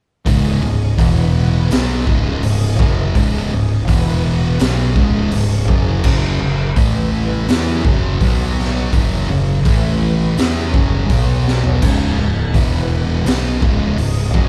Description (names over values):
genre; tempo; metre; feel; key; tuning
stoner and doom metal; 83 BPM; 4/4; straight; C# minor; A4 = 440 Hz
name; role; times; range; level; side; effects
string machine, violas; sustained chords; 0.3-14.5 s; F#3 to F#5; -32 LUFS; equal; ensemble chorus
thick fuzz guitar; riff; 0.3-14.5 s; C#2 to E4; -23 LUFS; equal; distortion
thick fuzz guitar; riff; 0.3-14.5 s; C#2 to E4; -22 LUFS; equal; distortion
growling fingered electric bass; bass; 0.3-14.5 s; C#1 to E2; -23 LUFS; equal; overdrive
raw garage drum kit; drums; 0.3-14.5 s; crash cymbal, hi-hat, kick drum, snare drum, toms; -20 LUFS; equal; none
room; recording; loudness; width
moderate large studio reverb, RT60 0.8 s; band playing live in one room; -16 LUFS; mono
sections
0.3-14.5 A section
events
drum fill 11.5-11.8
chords
0.3 C#5; 1.0 E5; 1.7 C#5; 3.9 E5; 4.6 C#5; 6.0 F#5; 6.8 A5; 7.5 F#5; 8.2 B5; 8.9 F#5; 9.7 A5; 10.4 F#5; 11.1 B5; 11.8 C#5; 12.5 E5; 13.3 C#5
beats
| 0.27 0.99 1.71 2.43 | 3.15 3.88 4.60 5.32 | 6.04 6.76 7.49 8.21 | 8.93 9.65 10.37 11.09 | 11.81 12.54 13.26 13.98